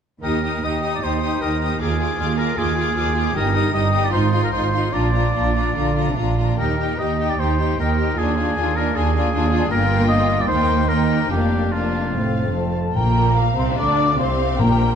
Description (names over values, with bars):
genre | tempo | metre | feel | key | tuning
classical, dramatic, fast romantic movement for symphony orchestra | 143-159 BPM | 4/4 | rubato | Eb major, Bb major from 9.7 s | A4 = 440 Hz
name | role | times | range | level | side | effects
rich chamber violin section | melody | 0.2-15.0 s | Bb4 to Eb6 | -31 LUFS | left 5 dB | none
warm oboe | second line | 0.2-12.5 s | F4 to Eb5 | -24 LUFS | equal | none
warm symphonic violin section | second line | 0.2-15.0 s | C4 to G5 | -27 LUFS | left 5 dB | none
warm symphonic viola section | accompaniment | 0.2-15.0 s | A3 to F4 | -25 LUFS | left 1 dB | none
clear studio cello section | bass | 0.2-15.0 s | Eb2 to D3 | -24 LUFS | right 3 dB | none
rich symphonic double bass section | bass | 0.2-15.0 s | F1 to Eb2 | -23 LUFS | right 3 dB | none
concert flute | second line | 12.5-15.0 s | A5 to D6 | -22 LUFS | left 2 dB | none
timpani | percussion | 13.0-15.0 s | Bb2 | -23 LUFS | left 1 dB | none
room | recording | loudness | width
moderate scoring stage reverb, RT60 2.2 s | dark, warm production | -17 LUFS | side -8 dB against mid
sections
0.2-13.0 A section; 13.0-15.0 B section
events
none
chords
0.2 Eb; 1.8 Ddim/Eb; 3.4 Eb/G; 4.1 Fm7/Ab; 4.9 Bb; 6.6 Eb; 8.2 Ddim/Eb; 9.7 Gm7; 10.5 Eb; 11.3 Bb/F; 12.1 F; 13.0 Bb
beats
| 0.23 0.63 1.02 1.42 | 1.81 2.19 2.58 2.97 | 3.35 3.74 4.13 4.53 | 4.93 5.35 5.76 6.17 | 6.59 7.00 7.40 7.79 | 8.18 8.57 8.96 9.34 | 9.72 10.10 10.50 10.90 | 11.31 11.73 12.14 12.55 | 12.96 13.38 13.79 14.20 | 14.60